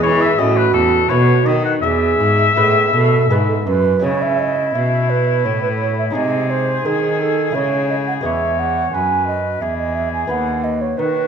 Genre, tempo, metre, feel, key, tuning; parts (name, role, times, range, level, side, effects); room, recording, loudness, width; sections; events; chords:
classical, baroque-style sonata movement with continuo; 81-88 BPM; 3/4; rubato; E major, C# minor from 4.0 s; A4 = 440 Hz
clear oboe; melody; 0.0-11.3 s; E4 to F#5; -20 LUFS; left 6 dB
mellow baroque flute; second line; 0.0-11.3 s; F#4 to G#5; -18 LUFS; right 5 dB
lute; accompaniment; 0.0-11.3 s; D#2 to B4; -23 LUFS; left 1 dB
rich cello; bass; 0.0-11.3 s; D#2 to E3; -20 LUFS; equal
wet scoring stage reverb, RT60 1.8 s; -14 LUFS; side -7 dB against mid
0.0-4.0 A section; 4.0-11.3 A section
0.4 A; 1.1 B7; 1.8 E; 4.0 C#m; 6.1 G#/B#; 7.6 C#m; 8.2 E; 10.3 B/D#